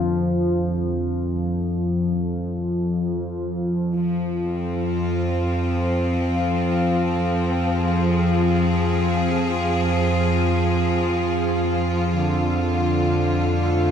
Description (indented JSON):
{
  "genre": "dark ambient drone",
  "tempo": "free time",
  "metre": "none",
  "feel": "none",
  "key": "unclear",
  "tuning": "A4 = 440 Hz",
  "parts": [
    { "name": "gamelan-type bossed gongs", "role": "arpeggios", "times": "0.0-6.0 s", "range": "D3", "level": "-39 LUFS", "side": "left 2 dB", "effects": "none" },
    { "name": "analog drone", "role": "drone", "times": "0.0-13.9 s", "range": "F2 to F3", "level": "-21 LUFS", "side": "equal", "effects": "chorus" },
    { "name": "clear chamber cello section", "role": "sustained chords", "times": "4.0-13.9 s", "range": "D3 to Ab4", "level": "-23 LUFS", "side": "left 1 dB", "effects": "none" }
  ],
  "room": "wet cathedral reverb, RT60 6.6 s",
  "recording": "none",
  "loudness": "-19 LUFS",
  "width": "side -8 dB against mid",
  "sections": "0.0-4.0 A section; 4.0-13.9 B section",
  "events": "none",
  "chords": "0.0 N.C.; 4.0 Fm; 12.2 Dm7",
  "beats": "free time"
}